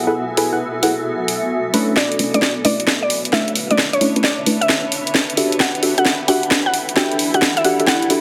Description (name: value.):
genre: UK garage, two-step garage.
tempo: 132 BPM.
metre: 4/4.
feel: swing 67% on 16ths.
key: B minor.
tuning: A4 = 440 Hz.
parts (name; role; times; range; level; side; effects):
soft string machine; sustained chords; 0.0-8.2 s; E5 to B5; -34 LUFS; equal; phaser, ensemble chorus.
deep mellow chord stab; stabs; 0.0-8.2 s; A3 to G#5; -22 LUFS; equal; chorus, delay.
granular cloud pad; texture; 0.0-8.2 s; B3 to A5; -28 LUFS; equal; built-in reverb.
garage drum kit; drums; 0.4-8.2 s; hi-hat, snare drum; -21 LUFS; equal; none.
mallet-like synth pluck; melody; 2.0-8.1 s; C#5 to G5; -23 LUFS; equal; chorus, delay.
room: wet lush hall reverb, RT60 1.8 s.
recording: heavily compressed radio sound.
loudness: -17 LUFS.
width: mono.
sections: 0.0-2.0 A section; 2.0-8.2 B section.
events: filter sweep on synth stab 0.0-2.0, 2.0-8.2; build-up 2.0-8.2; drum fill 2.0-8.2.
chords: 0.0 F#m11; 2.0 Bm11; 5.6 Em11.